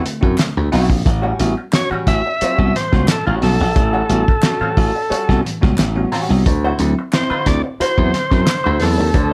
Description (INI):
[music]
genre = funk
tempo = 89 BPM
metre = 4/4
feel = straight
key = unclear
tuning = A4 = 438 Hz
[part]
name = vintage hollow-body jazz guitar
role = accompaniment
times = 0.0-9.2 s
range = G3 to C5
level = -26 LUFS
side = equal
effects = wah
[part]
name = bell-like tine electric piano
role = stabs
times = 0.0-9.3 s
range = A2 to F#4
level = -25 LUFS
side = equal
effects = slapback echo
[part]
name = cloth-damped thuddy drum kit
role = drums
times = 0.1-9.3 s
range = hi-hat, kick drum, snare drum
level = -20 LUFS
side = equal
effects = none
[part]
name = slap bass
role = bass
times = 0.2-9.3 s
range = A1 to F#2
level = -20 LUFS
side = equal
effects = none
[part]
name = group handclap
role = percussion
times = 0.4-8.6 s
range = none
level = -33 LUFS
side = equal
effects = none
[part]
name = overdriven tonewheel organ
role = melody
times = 1.8-9.3 s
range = A4 to E5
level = -23 LUFS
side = equal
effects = plate reverb
[sound]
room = light reverb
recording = none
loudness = -16 LUFS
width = mono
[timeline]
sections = 0.0-9.3 A section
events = none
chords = 0.0 D9; 1.1 A13; 6.5 D9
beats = 0.38 | 1.06 1.73 2.41 3.08 | 3.76 4.43 5.11 5.78 | 6.46 7.13 7.80 8.48 | 9.15